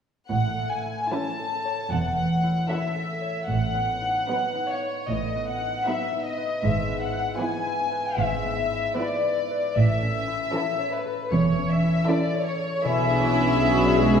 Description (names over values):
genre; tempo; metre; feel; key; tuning
classical, slow romantic movement for symphony orchestra; 77 BPM; 4/4; rubato; A major; A4 = 443 Hz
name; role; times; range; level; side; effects
warm studio violin section; melody; 0.3-14.2 s; B4 to A5; -26 LUFS; left 2 dB; none
concert harp; arpeggios; 0.3-14.2 s; G#2 to D5; -28 LUFS; left 2 dB; none
dark studio double bass section; bass; 0.3-14.2 s; E1 to B1; -29 LUFS; right 4 dB; none
warm studio cello section; bass; 0.3-14.2 s; E2 to B2; -28 LUFS; right 3 dB; none
clear studio violin section; second line; 1.1-14.2 s; D#4 to B4; -30 LUFS; equal; none
dark studio viola section; accompaniment; 1.1-14.2 s; E3 to E4; -26 LUFS; right 2 dB; none
room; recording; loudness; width
wet recital hall reverb, RT60 1.4 s; recorded in a church or concert hall; -22 LUFS; side -7 dB against mid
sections
0.3-14.2 A section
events
none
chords
0.3 A; 3.5 B7/A; 6.6 E/G#; 9.8 A; 12.8 E7/B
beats
| 0.31 1.12 1.92 2.70 | 3.49 4.29 5.10 5.87 | 6.64 7.41 8.19 8.98 | 9.76 10.54 11.31 12.08 | 12.84 13.60